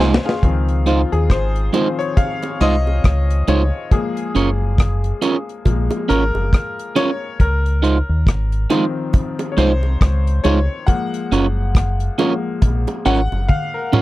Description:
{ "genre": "lovers rock reggae", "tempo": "69 BPM", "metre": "4/4", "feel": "swing 59% on 16ths", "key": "Db major", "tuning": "A4 = 441 Hz", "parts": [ { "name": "clear grand piano", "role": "accompaniment", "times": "0.0-14.0 s", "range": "Eb3 to C6", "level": "-23 LUFS", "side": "left 4 dB", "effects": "none" }, { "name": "electric guitar at the edge of break-up", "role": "stabs", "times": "0.0-14.0 s", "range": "Ab3 to Db5", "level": "-17 LUFS", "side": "right 4 dB", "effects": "none" }, { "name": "deep dub fingered electric bass", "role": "bass", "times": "0.0-13.5 s", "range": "Gb1 to Eb2", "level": "-17 LUFS", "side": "equal", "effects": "none" }, { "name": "deep reggae drum kit", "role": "drums", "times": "0.0-14.0 s", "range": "hi-hat, kick drum, rim click, snare drum, toms", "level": "-16 LUFS", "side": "equal", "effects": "none" }, { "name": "bongos", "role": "percussion", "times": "1.7-14.0 s", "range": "none", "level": "-28 LUFS", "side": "right 5 dB", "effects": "none" } ], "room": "little or no reverb", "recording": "dark, warm production", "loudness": "-15 LUFS", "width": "side -17 dB against mid", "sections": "0.4-14.0 A section", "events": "drum fill 0.0-0.4, 13.5-14.0; grand piano solo 0.4-14.0", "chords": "0.4 Dbmaj9; 3.9 Gbmaj7; 7.4 Dbmaj9; 10.9 Gbmaj7" }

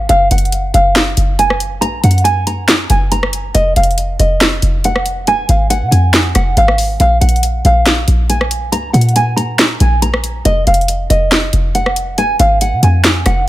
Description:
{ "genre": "hip hop, trap", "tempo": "139 BPM", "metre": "4/4", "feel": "half-time", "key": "F phrygian", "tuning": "A4 = 439 Hz", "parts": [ { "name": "nylon-string guitar", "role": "melody", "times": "0.0-13.4 s", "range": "Eb5 to Bb5", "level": "-15 LUFS", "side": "equal", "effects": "low-pass filter" }, { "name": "short 808-style bass", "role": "bass", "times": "0.0-13.5 s", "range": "F1 to C3", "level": "-14 LUFS", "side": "equal", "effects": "none" }, { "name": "trap drum kit", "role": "drums", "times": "0.1-13.4 s", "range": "handclaps, hi-hat, rim click, snare drum", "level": "-15 LUFS", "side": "equal", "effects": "overdrive" } ], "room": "little or no reverb", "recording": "none", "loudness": "-10 LUFS", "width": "side -15 dB against mid", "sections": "0.0-7.0 A section; 7.0-13.5 A section", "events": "none", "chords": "0.1 Gbmaj7; 3.5 Fm7; 7.0 Bb7(no3); 10.5 F7(no3)" }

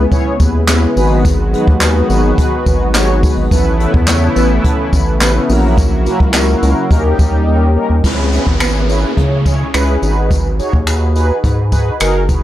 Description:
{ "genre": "dance-pop", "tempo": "106 BPM", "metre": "4/4", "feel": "straight", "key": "G# minor", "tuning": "A4 = 440 Hz", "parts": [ { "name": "mellow synth brass", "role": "accompaniment", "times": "0.0-12.4 s", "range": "A#3 to C#5", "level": "-17 LUFS", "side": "left 1 dB", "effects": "chorus, sidechain pumping" }, { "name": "warm analog pad", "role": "sustained chords", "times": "0.0-8.0 s", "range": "C#3 to G4", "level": "-19 LUFS", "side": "equal", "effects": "chorus, sidechain pumping" }, { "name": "round analog bass", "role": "bass", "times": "0.0-12.4 s", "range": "F#1 to C#3", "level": "-14 LUFS", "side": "equal", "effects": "sidechain pumping" }, { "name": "jazz brush drum kit", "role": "drums", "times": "0.1-12.4 s", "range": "crash cymbal, finger snaps, handclaps, hi-hat, kick drum, snare drum", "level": "-15 LUFS", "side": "equal", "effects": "none" }, { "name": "tambourine", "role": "percussion", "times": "0.1-12.4 s", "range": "none", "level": "-28 LUFS", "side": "left 4 dB", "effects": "none" }, { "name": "downlifter", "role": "sound effects", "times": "8.0-12.4 s", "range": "none", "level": "-23 LUFS", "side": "equal", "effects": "none" } ], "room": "small room ambience", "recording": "none", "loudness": "-10 LUFS", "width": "side -13 dB against mid", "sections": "0.0-8.0 A section; 8.0-12.4 B section", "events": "drums muted 7.5-8.0", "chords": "0.0 C#m7; 1.0 G#m7; 3.5 Aadd9; 5.5 F#7/A#; 6.9 D#7; 8.0 C#m7; 10.0 G#m7" }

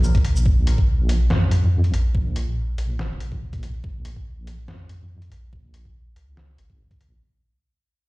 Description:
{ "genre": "deep dubstep", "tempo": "142 BPM", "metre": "4/4", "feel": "swing 54% on 16ths, half-time", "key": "Bb minor", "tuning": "A4 = 440 Hz", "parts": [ { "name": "deep soft wobble bass", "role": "bass", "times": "0.0-7.2 s", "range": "Ab1 to F2", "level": "-21 LUFS", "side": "equal", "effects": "chorus" }, { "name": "trip hop sampler-style drum kit", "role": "drums", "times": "0.0-7.1 s", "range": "hi-hat, shaker, snare drum", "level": "-30 LUFS", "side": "equal", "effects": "studio reverb" }, { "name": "electronic kick drum", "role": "drums", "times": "0.1-7.0 s", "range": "none", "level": "-21 LUFS", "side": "equal", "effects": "studio reverb" } ], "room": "digital ambience", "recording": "played on a big sound system in a bare room, large studio reverb", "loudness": "-19 LUFS", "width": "side -21 dB against mid", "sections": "0.0-7.2 A section", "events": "fade-out 0.0-7.2", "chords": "none" }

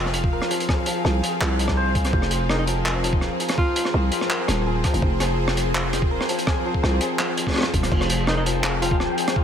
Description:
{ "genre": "half-time drum and bass", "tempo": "166 BPM", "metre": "4/4", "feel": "half-time", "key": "F minor", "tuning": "A4 = 440 Hz", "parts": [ { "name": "bowed-like drone", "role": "sustained chords", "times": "0.0-9.4 s", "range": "F3 to F5", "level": "-27 LUFS", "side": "equal", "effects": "built-in reverb, sidechain pumping" }, { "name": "santur", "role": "arpeggios", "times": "0.0-9.4 s", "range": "F3 to C5", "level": "-28 LUFS", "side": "left 3 dB", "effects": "vintage 12-bit sampler grit, digital delay" }, { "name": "growling 808-style bass", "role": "bass", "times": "0.0-9.1 s", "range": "Eb1 to C2", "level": "-24 LUFS", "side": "equal", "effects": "tube saturation" }, { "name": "crunchy breakbeat drum kit", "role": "drums", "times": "0.1-9.3 s", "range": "crash cymbal, handclaps, hi-hat, rim click", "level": "-26 LUFS", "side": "equal", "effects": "none" }, { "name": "electronic kick drum", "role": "drums", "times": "0.2-9.4 s", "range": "none", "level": "-23 LUFS", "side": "equal", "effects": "none" }, { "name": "breathy alto saxophone", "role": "melody", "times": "2.5-3.9, 8.3-9.0 s", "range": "Eb4 to F4", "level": "-30 LUFS", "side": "left 1 dB", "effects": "ping-pong delay" }, { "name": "flickering grainy texture", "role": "texture", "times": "8.4-9.4 s", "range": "G5", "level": "-32 LUFS", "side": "equal", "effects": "built-in reverb" } ], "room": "light reverb, small room ambience", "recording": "none", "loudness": "-19 LUFS", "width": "side -8 dB against mid", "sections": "0.0-9.4 A section", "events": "none", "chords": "0.0 Fm" }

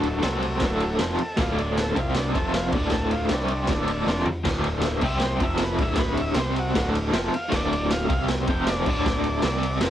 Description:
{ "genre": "garage rock duo or trio", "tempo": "156 BPM", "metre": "4/4", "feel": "straight", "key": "unclear", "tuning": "A4 = 439 Hz", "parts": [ { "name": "overdriven combo organ", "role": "melody", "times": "0.0-9.8 s", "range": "F#3 to G5", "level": "-30 LUFS", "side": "equal", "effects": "none" }, { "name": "raw garage guitar", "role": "riff", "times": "0.0-9.9 s", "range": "D2 to C4", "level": "-24 LUFS", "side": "equal", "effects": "overdrive, tremolo, cassette tape" }, { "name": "growling picked electric bass", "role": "bass", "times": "0.0-9.9 s", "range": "D1 to C2", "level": "-30 LUFS", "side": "equal", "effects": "overdrive" }, { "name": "raw garage drum kit", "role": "drums", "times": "0.0-9.9 s", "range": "crash cymbal, kick drum, ride cymbal, snare drum, toms", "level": "-27 LUFS", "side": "equal", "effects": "cassette tape" } ], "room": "light reverb", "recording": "home recording on cassette", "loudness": "-21 LUFS", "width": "side -11 dB against mid", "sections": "0.0-9.9 A section", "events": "transistor combo organ solo 0.0-9.9; drum fill 4.1-4.5", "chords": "0.2 C5; 0.6 D; 2.0 C5; 2.3 F5; 2.7 D5; 3.3 C5; 3.7 D5; 5.0 C5; 5.4 F5; 5.8 D5; 6.4 C5; 6.7 D5; 8.1 C5; 8.5 F5; 8.9 D5; 9.4 C5" }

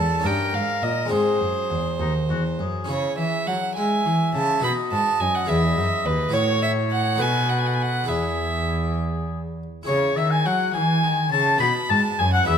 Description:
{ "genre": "classical, baroque-style sonata movement with continuo", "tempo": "69 BPM (dotted quarters)", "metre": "6/8", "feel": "straight", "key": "C# minor, E major from 6.3 s", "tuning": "A4 = 440 Hz", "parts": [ { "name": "warm oboe", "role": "melody", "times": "0.0-12.6 s", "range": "D#4 to B5", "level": "-26 LUFS", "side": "left 7 dB", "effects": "none" }, { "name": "rich violin", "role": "second line", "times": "0.0-12.6 s", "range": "B4 to B5", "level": "-25 LUFS", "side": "right 5 dB", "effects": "none" }, { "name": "harpsichord", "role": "accompaniment", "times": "0.0-12.6 s", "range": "D#2 to C#5", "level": "-26 LUFS", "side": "left 2 dB", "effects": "none" }, { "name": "warm cello", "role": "bass", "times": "0.0-12.6 s", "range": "D#2 to G#3", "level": "-25 LUFS", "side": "right 1 dB", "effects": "none" } ], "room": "moderate recital hall reverb, RT60 1.6 s", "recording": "none", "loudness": "-20 LUFS", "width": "side -8 dB against mid", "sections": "0.0-9.9 A section; 9.9-12.6 A section", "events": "none", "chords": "0.2 D#7/G; 1.1 G#; 2.9 C#m; 4.6 B; 5.5 E; 6.3 F#m7/A; 7.2 B7; 8.1 E; 9.9 C#m; 11.6 B" }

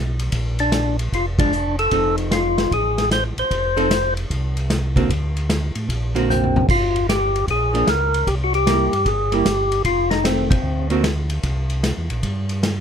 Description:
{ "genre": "soul jazz organ trio", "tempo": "151 BPM", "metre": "4/4", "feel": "swing 66% on 8ths", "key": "F mixolydian", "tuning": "A4 = 439 Hz", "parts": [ { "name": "mellow tonewheel organ", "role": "bass", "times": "0.0-12.8 s", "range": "F1 to A2", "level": "-23 LUFS", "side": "equal", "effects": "chorus vibrato, slow rotary speaker" }, { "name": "vintage drum kit", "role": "drums", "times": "0.2-12.8 s", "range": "crash cymbal, hi-hat, kick drum, ride cymbal, snare drum, toms", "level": "-23 LUFS", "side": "equal", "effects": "none" }, { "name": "percussive tonewheel organ", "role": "melody", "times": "0.6-10.9 s", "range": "C4 to C5", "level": "-19 LUFS", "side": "left 2 dB", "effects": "slow rotary speaker, overdrive" }, { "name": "archtop guitar, miked and amplified", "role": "accompaniment", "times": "1.4-11.0 s", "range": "D3 to A4", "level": "-22 LUFS", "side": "right 3 dB", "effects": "none" } ], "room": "little or no reverb", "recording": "none", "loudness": "-17 LUFS", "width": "side -8 dB against mid", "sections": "0.0-12.8 A section", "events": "band accent 1.3, 10.5; drum fill 6.3-6.7", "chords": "0.3 Bb; 1.9 F7; 5.1 D7b13; 6.7 Gm7; 8.3 C7; 9.9 F7; 10.7 Daug7; 11.4 C7" }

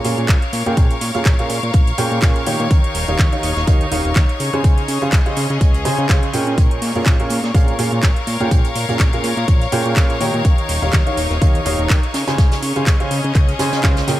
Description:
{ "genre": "piano house", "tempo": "124 BPM", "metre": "4/4", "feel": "swing 56% on 16ths", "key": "Bb dorian", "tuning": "A4 = 440 Hz", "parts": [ { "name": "rich studio violin section", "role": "sustained chords", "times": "0.0-14.2 s", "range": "Db5 to Db6", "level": "-26 LUFS", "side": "left 2 dB", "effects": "sidechain pumping" }, { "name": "clear upright piano", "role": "riff", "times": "0.0-14.2 s", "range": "Bb2 to Ab5", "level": "-22 LUFS", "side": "right 2 dB", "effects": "sidechain pumping, digital delay" }, { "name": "fat analog bass", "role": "bass", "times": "0.0-14.2 s", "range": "Eb1 to Db3", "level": "-22 LUFS", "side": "equal", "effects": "sidechain pumping" }, { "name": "house drum kit", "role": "drums", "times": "0.0-14.2 s", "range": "handclaps, hi-hat", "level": "-25 LUFS", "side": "right 1 dB", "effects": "none" }, { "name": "rich studio string section", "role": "texture", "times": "0.0-14.2 s", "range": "Db4 to F5", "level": "-26 LUFS", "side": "left 2 dB", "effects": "sidechain pumping" }, { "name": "loose indie drum kit", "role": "drums", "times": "0.1-14.2 s", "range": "hi-hat, snare drum", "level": "-32 LUFS", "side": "right 2 dB", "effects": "none" }, { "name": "electronic kick drum", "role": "drums", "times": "0.3-13.9 s", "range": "none", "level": "-14 LUFS", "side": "equal", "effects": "none" } ], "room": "studio ambience", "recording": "none", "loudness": "-14 LUFS", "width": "side -14 dB against mid", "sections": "0.0-14.2 A section", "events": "none", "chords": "0.0 Bbm7; 2.7 Eb9; 4.4 Dbmaj7; 6.6 Bbm7; 10.4 Eb9; 12.1 Dbmaj7" }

